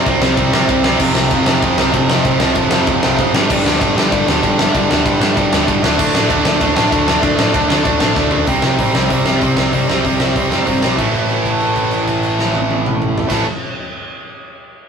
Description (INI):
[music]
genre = punk rock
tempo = 192 BPM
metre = 4/4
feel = straight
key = A minor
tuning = A4 = 443 Hz
[part]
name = distorted electric guitar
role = riff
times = 0.0-13.4 s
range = F2 to D4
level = -15 LUFS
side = right 3 dB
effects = overdrive
[part]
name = sludgy distorted guitar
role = riff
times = 0.0-13.5 s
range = F2 to D4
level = -22 LUFS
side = left 6 dB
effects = overdrive
[part]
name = overdriven picked electric bass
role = bass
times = 0.0-13.4 s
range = F1 to A2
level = -23 LUFS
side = left 1 dB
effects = none
[part]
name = big rock drum kit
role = drums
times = 0.1-13.4 s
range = crash cymbal, hi-hat, kick drum, ride cymbal, snare drum, toms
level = -17 LUFS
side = left 1 dB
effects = none
[sound]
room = moderate stone room reverb, RT60 0.9 s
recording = rough rehearsal-room recording, warm saturation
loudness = -12 LUFS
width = side -6 dB against mid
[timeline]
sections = 0.0-8.5 A section; 8.5-11.0 B section; 11.0-13.5 C section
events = drum fill 8.2-8.5; held note 11.0-13.3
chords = 0.0 C5; 1.0 F5; 3.3 G5; 5.8 D5; 8.5 C5; 11.0 A5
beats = 0.07 0.38 0.69 | 1.00 1.31 1.62 1.94 | 2.25 2.56 2.87 3.18 | 3.49 3.81 4.12 4.43 | 4.74 5.05 5.36 5.68 | 5.99 6.30 6.61 6.92 | 7.23 7.54 7.86 8.17 | 8.48 8.79 9.10 9.41 | 9.73 10.04 10.35 10.66 | 10.98 11.29 11.61 11.92 | 12.23 12.54 12.86 13.17